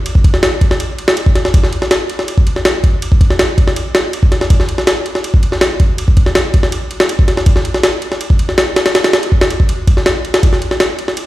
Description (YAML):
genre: drum and bass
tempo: 162 BPM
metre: 4/4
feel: straight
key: none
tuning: none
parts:
  - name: jungle sampler-style drum kit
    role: drums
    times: 0.1-11.3 s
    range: kick drum, ride cymbal, snare drum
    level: -10 LUFS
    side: equal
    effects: studio reverb
room: light reverb, digital ambience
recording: played on a big sound system in a bare room, large studio reverb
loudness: -11 LUFS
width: side -16 dB against mid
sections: 0.0-11.3 A section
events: none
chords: none